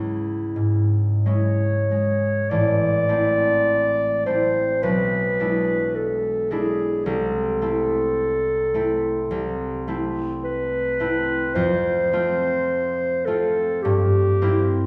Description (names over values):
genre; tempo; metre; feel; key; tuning
classical, romantic duo for clarinet and harp; 42-55 BPM; 4/4; rubato; A minor; A4 = 438 Hz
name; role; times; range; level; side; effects
mellow clarinet; melody; 0.0-14.9 s; E4 to D5; -24 LUFS; equal; none
concert harp; accompaniment; 0.0-14.9 s; A1 to F4; -26 LUFS; equal; none
room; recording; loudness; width
wet recital hall reverb, RT60 1.7 s; heard from further back in the room, studio ambience; -22 LUFS; mono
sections
0.0-2.5 A section; 2.5-14.9 B section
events
none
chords
0.0 C#m; 2.5 Am; 4.8 E7/B; 7.1 Am/C; 11.6 F; 13.8 C7/G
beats
1.25 | 2.51 3.67 4.83 5.95 | 7.05 8.17 9.31 10.44 | 11.56 12.70 13.85